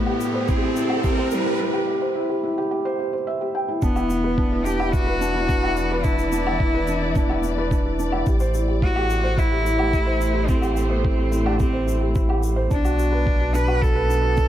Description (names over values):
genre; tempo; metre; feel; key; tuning
piano and strings electronica; 108 BPM; 4/4; straight; E minor; A4 = 439 Hz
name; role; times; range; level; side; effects
clear cello; melody; 0.0-14.5 s; G3 to B4; -25 LUFS; equal; none
dark symphonic string section; sustained chords; 0.0-14.5 s; A2 to D5; -31 LUFS; left 1 dB; sidechain pumping
felt-muted upright piano; riff; 0.0-14.5 s; D4 to G5; -25 LUFS; right 1 dB; ping-pong delay
riser; sound effects; 0.0-1.6 s; none; -28 LUFS; right 2 dB; none
woodblock and shaker; drums; 0.1-14.5 s; none; -33 LUFS; equal; none
electronic kick drum; drums; 0.5-14.5 s; none; -22 LUFS; equal; overdrive
warm sub bass; bass; 3.8-14.5 s; E1 to B1; -24 LUFS; equal; tube saturation, sidechain pumping
room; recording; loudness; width
light reverb, small room ambience; none; -19 LUFS; side -12 dB against mid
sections
0.0-3.8 A section; 3.8-14.5 B section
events
build-up 0.0-3.8; riser 0.0-1.6; break 1.6-3.8; drop 3.8-14.5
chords
0.0 Am7; 3.8 E5; 8.3 Am7; 12.7 Bm7